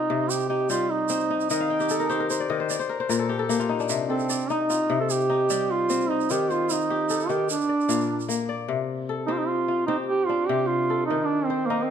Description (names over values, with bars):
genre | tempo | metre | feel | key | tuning
west african traditional, West African string and xylophone music | 100 BPM (dotted quarters) | 12/8 | straight | C dorian | A4 = 440 Hz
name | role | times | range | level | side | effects
mellow duduk | melody | 0.0-11.9 s | Bb3 to A4 | -24 LUFS | right 4 dB | none
kora | arpeggios | 0.0-11.9 s | Bb2 to G5 | -26 LUFS | left 6 dB | none
tube shaker | percussion | 0.3-8.4 s | none | -33 LUFS | right 8 dB | none
room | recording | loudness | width
moderate recital hall reverb, RT60 1.5 s | none | -22 LUFS | side -8 dB against mid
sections
0.0-8.7 A section; 8.7-11.9 B section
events
kora fill 1.5-3.9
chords
0.0 Cm; 1.5 Eb; 2.7 N.C.; 3.9 Cm; 6.3 Eb; 7.5 Bb; 8.7 C5; 11.1 Eb5